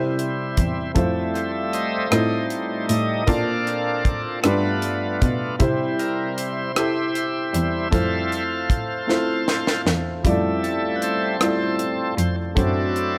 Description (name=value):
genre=slow gospel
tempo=52 BPM (dotted quarters)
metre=6/8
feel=straight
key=F major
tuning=A4 = 442 Hz
part: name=warm upright piano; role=accompaniment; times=0.0-13.2 s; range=G2 to D5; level=-27 LUFS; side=equal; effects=none
part: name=bright tonewheel organ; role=sustained chords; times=0.0-13.2 s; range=F#3 to F5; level=-27 LUFS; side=equal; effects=slow rotary speaker, overdrive
part: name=clear cello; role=bass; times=0.0-13.2 s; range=E2 to C3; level=-28 LUFS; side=equal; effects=none
part: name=tight funk drum kit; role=drums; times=0.2-13.1 s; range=hi-hat, kick drum, rim click, snare drum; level=-26 LUFS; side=equal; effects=none
room=light reverb, studio ambience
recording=none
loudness=-22 LUFS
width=mono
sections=0.0-13.2 A section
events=tonewheel organ solo 0.0-13.2; drum fill 9.1-10.2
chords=0.0 C; 1.0 Fmaj7; 2.1 F7/A; 3.3 Bbmaj7; 4.4 G7; 5.6 C; 7.9 Fmaj7; 12.6 D7/F#